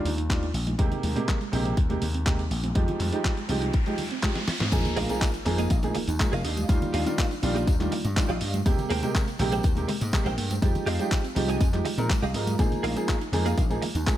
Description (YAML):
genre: nu-disco, nu disco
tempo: 122 BPM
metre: 4/4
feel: straight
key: Bb mixolydian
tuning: A4 = 440 Hz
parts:
  - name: clear baby grand piano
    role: accompaniment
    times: 0.0-14.2 s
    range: C3 to Bb4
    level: -30 LUFS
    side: right 1 dB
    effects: tape echo
  - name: vintage slap bass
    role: bass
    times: 0.0-14.0 s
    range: F1 to Bb2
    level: -28 LUFS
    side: left 1 dB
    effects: none
  - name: soft round pluck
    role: arpeggios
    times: 0.1-14.1 s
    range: G3 to F4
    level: -35 LUFS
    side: right 4 dB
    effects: chorus, sidechain pumping, tape echo
  - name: dusty soul sampler-style drum kit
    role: drums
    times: 0.1-14.2 s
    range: crash cymbal, handclaps, hi-hat, snare drum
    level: -34 LUFS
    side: equal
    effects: none
  - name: congas and tambourine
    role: percussion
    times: 0.1-14.2 s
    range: none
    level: -36 LUFS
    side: equal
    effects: none
  - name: electronic kick drum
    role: drums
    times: 0.3-14.2 s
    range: none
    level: -25 LUFS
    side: left 1 dB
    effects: none
  - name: riser and sub drop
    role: sound effects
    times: 2.2-6.7 s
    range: none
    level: -37 LUFS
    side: equal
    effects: none
  - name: direct-recorded clean electric guitar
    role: riff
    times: 5.0-14.1 s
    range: G4 to Ab5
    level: -34 LUFS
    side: right 2 dB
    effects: ensemble chorus, vintage 12-bit sampler grit, tape echo
room: little or no reverb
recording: none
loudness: -23 LUFS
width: side -12 dB against mid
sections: 0.0-4.7 A section; 4.7-14.2 B section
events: riser 2.2-4.7; drum fill 4.4-4.7; drop 4.7-14.2; impact 4.7-6.7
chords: 0.0 Ebmaj9; 0.8 Abmaj9; 2.8 Fm9; 4.7 Bb7sus4; 6.4 Ebmaj9; 8.7 Abmaj9; 10.6 Fm9; 12.6 Bb7sus4